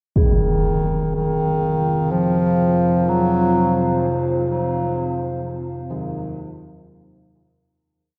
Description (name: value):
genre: dark ambient drone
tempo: 62 BPM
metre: 4/4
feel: straight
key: F phrygian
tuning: A4 = 441 Hz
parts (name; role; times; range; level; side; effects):
- warm bass clarinet; melody; 0.2-4.0 s; Eb3 to Gb3; -22 LUFS; equal; tape echo
- dark analog pad; sustained chords; 0.2-7.9 s; C4 to F5; -26 LUFS; equal; subtle chorus
- deep rumbling drone; drone; 1.6-8.0 s; F2 to C3; -30 LUFS; equal; built-in reverb
- impact; percussion; 0.2-0.4 s; none; -25 LUFS; equal; low-pass filter on sfx
- quartz singing bowl; texture; 0.2-7.9 s; Ab4; -32 LUFS; equal; none
- carillon bells; arpeggios; 2.1-8.2 s; Eb3 to Eb4; -37 LUFS; equal; none
room: wet huge ambient reverb, RT60 8.1 s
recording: dark, warm production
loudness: -20 LUFS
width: mono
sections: 0.2-7.9 A section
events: fade-in on synth drone 0.2-7.9; fade-out on singing bowl 0.2-7.9; fade-out 4.0-7.9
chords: 0.2 F5